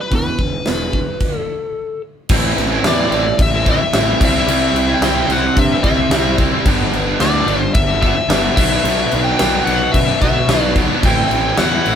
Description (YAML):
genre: quiet-loud alternative rock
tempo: 110 BPM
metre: 4/4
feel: straight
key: unclear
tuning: A4 = 442 Hz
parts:
  - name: biting lead guitar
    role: melody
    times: 0.0-12.0 s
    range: B4 to G5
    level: -19 LUFS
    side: left 1 dB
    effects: overdrive
  - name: clean electric guitar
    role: arpeggios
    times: 0.0-1.2 s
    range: E2 to E3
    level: -26 LUFS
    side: right 5 dB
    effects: none
  - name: fuzz picked electric bass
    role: bass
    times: 0.1-12.0 s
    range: E1 to G2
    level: -20 LUFS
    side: equal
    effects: overdrive
  - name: big rock drum kit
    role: drums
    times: 0.1-12.0 s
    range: crash cymbal, hi-hat, kick drum, snare drum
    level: -18 LUFS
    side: equal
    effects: none
  - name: crunchy overdriven guitar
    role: riff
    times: 2.3-12.0 s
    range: G2 to E4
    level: -19 LUFS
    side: right 4 dB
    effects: none
  - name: overdriven semi-hollow guitar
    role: riff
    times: 2.3-12.0 s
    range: G2 to E4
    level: -22 LUFS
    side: left 7 dB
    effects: spring reverb
room: moderate small room reverb, RT60 0.5 s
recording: band playing live in one room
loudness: -13 LUFS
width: side -8 dB against mid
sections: 0.0-2.3 A section; 2.3-12.0 B section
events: stop 1.2-2.3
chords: 0.1 E5; 2.3 Am; 4.2 C; 6.7 G; 8.6 Bm; 11.0 Am